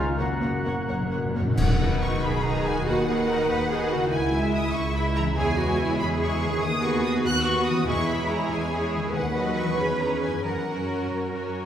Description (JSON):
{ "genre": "classical, dramatic, fast romantic movement for symphony orchestra", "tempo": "85-96 BPM (dotted quarters)", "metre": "6/8", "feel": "straight", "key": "B major", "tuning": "A4 = 440 Hz", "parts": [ { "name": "clear symphonic violin section", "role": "melody", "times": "0.0-11.1 s", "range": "F#5 to F#6", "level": "-31 LUFS", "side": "left 2 dB", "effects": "none" }, { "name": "clear clarinet", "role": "second line", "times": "0.0-0.9 s", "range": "F#4", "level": "-34 LUFS", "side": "left 1 dB", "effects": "none" }, { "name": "clear symphonic violin section", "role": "second line", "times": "0.0-11.7 s", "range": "E4 to E5", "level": "-34 LUFS", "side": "left 2 dB", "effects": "none" }, { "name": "mellow cor anglais", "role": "second line", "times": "0.0-1.3 s", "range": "E#5 to F#5", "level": "-35 LUFS", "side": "right 1 dB", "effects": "none" }, { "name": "mellow hollow concert flute", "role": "second line", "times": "0.0-1.3 s", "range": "G#5 to A#5", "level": "-38 LUFS", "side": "right 1 dB", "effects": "none" }, { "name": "rich symphonic viola section", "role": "accompaniment", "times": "0.0-11.7 s", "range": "D#3 to G#4", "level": "-29 LUFS", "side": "right 1 dB", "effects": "none" }, { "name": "mellow French horn section", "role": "sustained chords", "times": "0.0-1.3 s", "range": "G#3 to F#4", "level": "-35 LUFS", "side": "left 2 dB", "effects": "none" }, { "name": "concert harp", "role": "arpeggios", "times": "0.0-11.7 s", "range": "F#2 to C#5", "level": "-32 LUFS", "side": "left 4 dB", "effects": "none" }, { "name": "clear symphonic cello section", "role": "bass", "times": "0.0-11.4 s", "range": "C#2 to B4", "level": "-29 LUFS", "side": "right 2 dB", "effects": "none" }, { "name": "clear symphonic double bass section", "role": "bass", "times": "0.0-11.7 s", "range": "F#1 to F#2", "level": "-30 LUFS", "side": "right 2 dB", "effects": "none" }, { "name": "timpani", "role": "percussion", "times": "0.2-2.2 s", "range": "F#2 to B2", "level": "-30 LUFS", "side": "equal", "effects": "none" }, { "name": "clash cymbals and concert bass drum", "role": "percussion", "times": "1.6-2.4 s", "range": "none", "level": "-30 LUFS", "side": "equal", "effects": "none" } ], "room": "wet scoring stage reverb, RT60 1.7 s", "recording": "heard from further back in the room", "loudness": "-22 LUFS", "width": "side -9 dB against mid", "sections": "0.0-1.6 A section; 1.6-11.7 B section", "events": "timpani fill 0.2-1.6; band accent 1.6-2.0", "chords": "0.2 F#; 1.6 B; 2.9 B/D#; 4.1 C#m; 5.4 C#m/E; 6.6 B/D#; 7.9 C#m/E; 9.1 B/D#; 9.8 C#m7/E; 10.4 F#", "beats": "| 0.19 0.88 | 1.58 2.23 | 2.86 3.49 | 4.12 4.74 | 5.37 5.99 | 6.62 7.25 | 7.88 8.51 | 9.14 9.79 | 10.45 11.11" }